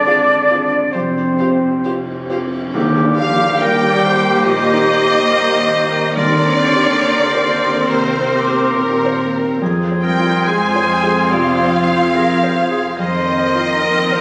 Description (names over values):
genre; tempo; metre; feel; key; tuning
cinematic, emotional film score for orchestra; 70 BPM; 4/4; rubato; Eb major; A4 = 439 Hz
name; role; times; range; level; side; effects
bright concert flute; second line; 0.0-14.2 s; C5 to D6; -23 LUFS; equal; none
clear clarinet; second line; 0.0-14.2 s; Eb4 to D5; -25 LUFS; equal; none
warm studio violin section; second line; 0.0-14.2 s; Bb4 to Ab5; -28 LUFS; equal; none
warm concert grand piano; accompaniment; 0.0-14.2 s; Eb2 to Eb5; -23 LUFS; equal; none
mellow French horn section; sustained chords; 0.0-14.2 s; F3 to D4; -26 LUFS; equal; none
warm studio cello section; bass; 0.0-14.2 s; Bb2 to Ab3; -26 LUFS; equal; none
warm studio double bass section; bass; 0.0-14.2 s; F1 to F2; -30 LUFS; equal; none
warm studio violin section; melody; 0.1-14.2 s; Bb4 to Ab5; -22 LUFS; equal; none
warm studio viola section; accompaniment; 0.1-14.2 s; Bb3 to Bb4; -24 LUFS; equal; none
warm oboe; second line; 2.7-14.2 s; G4 to Bb4; -27 LUFS; equal; none
tam-tam; percussion; 2.7-6.1 s; none; -30 LUFS; equal; none
timpani; percussion; 2.7-7.4 s; Eb3; -25 LUFS; equal; none
room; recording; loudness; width
moderate scoring stage reverb, RT60 2.1 s; recorded on a phone in the room, club ambience; -15 LUFS; mono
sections
0.0-2.7 A section; 2.7-14.2 B section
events
band accent 2.7-3.6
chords
0.0 Ab6; 0.9 Fsus2; 2.7 Ebmaj7; 6.2 Cm7/Eb; 9.6 Fm; 13.0 Bbsus2/F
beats
0.05 0.94 1.85 | 2.74 3.60 4.45 5.30 | 6.16 7.03 7.89 8.74 | 9.61 10.46 11.31 12.15 | 12.99 13.83